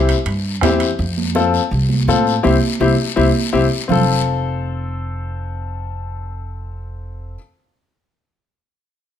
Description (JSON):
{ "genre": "latin, cumbia", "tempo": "165 BPM", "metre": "4/4", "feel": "straight", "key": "F major", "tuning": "A4 = 440 Hz", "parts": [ { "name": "bright upright piano", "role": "accompaniment", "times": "0.0-7.4 s", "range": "C4 to A4", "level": "-19 LUFS", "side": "left 6 dB", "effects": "none" }, { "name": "upright bass", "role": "bass", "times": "0.0-7.3 s", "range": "F1 to A2", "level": "-20 LUFS", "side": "right 1 dB", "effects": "none" }, { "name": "guiro", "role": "percussion", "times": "0.1-4.0 s", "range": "none", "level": "-28 LUFS", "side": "left 8 dB", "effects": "none" }, { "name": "timbales", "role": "percussion", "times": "0.1-1.0 s", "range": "none", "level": "-27 LUFS", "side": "right 6 dB", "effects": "none" }, { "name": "congas", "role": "percussion", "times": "0.3-4.0 s", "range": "none", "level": "-22 LUFS", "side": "right 6 dB", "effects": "none" }, { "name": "bombo", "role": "percussion", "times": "0.6-0.8 s", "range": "none", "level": "-21 LUFS", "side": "right 3 dB", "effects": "none" } ], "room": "moderate large studio reverb, RT60 0.9 s", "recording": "none", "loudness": "-15 LUFS", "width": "side -9 dB against mid", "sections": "0.0-3.9 A section; 3.9-6.8 B section", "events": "band accent 2.4-3.9", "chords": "0.0 C; 1.0 F; 2.4 C; 3.9 F" }